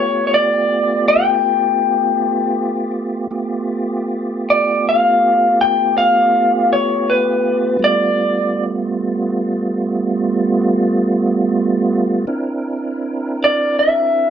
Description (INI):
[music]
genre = blues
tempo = 53 BPM (dotted quarters)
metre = 12/8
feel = straight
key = G mixolydian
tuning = A4 = 444 Hz
[part]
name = electric guitar through a small old amp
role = melody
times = 0.0-14.3 s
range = B4 to G5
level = -14 LUFS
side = left 1 dB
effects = none
[part]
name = tonewheel organ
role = sustained chords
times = 0.0-14.3 s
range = G3 to Bb4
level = -18 LUFS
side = right 2 dB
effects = chorus vibrato, slow rotary speaker
[sound]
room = moderate spring reverb, RT60 1.1 s, digital ambience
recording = none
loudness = -14 LUFS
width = side -8 dB against mid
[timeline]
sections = 0.0-14.3 A section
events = none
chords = 0.0 G9; 12.3 C9